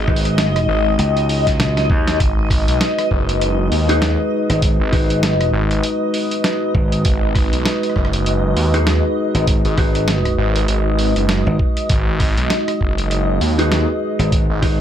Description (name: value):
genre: glitch hop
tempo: 99 BPM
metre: 4/4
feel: swing 58% on 16ths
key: G# minor pentatonic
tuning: A4 = 443 Hz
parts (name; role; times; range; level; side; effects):
- dark analog pad; sustained chords; 0.0-14.8 s; G#3 to D#5; -22 LUFS; equal; chorus, sidechain pumping
- mellow electric guitar; stabs; 0.0-14.8 s; D#4 to B4; -24 LUFS; left 1 dB; sidechain pumping, tape echo
- phased detuned saw bass; bass; 0.0-14.6 s; F#1 to D#2; -18 LUFS; equal; phaser, tube saturation
- granular cloud pad; texture; 0.0-14.8 s; D#5; -24 LUFS; left 2 dB; built-in reverb, sidechain pumping
- gritty slap bass; bass; 0.1-14.8 s; G#1 to D#2; -19 LUFS; equal; overdrive
- boom bap sampler-style drum kit; drums; 0.1-14.8 s; hi-hat, rim click, snare drum, toms; -23 LUFS; right 1 dB; none
- electronic kick drum; drums; 0.1-14.8 s; none; -18 LUFS; equal; none
room: little or no reverb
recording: none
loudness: -14 LUFS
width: side -10 dB against mid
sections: 0.0-14.8 A section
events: drum fill 1.6-2.2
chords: 0.0 G#m7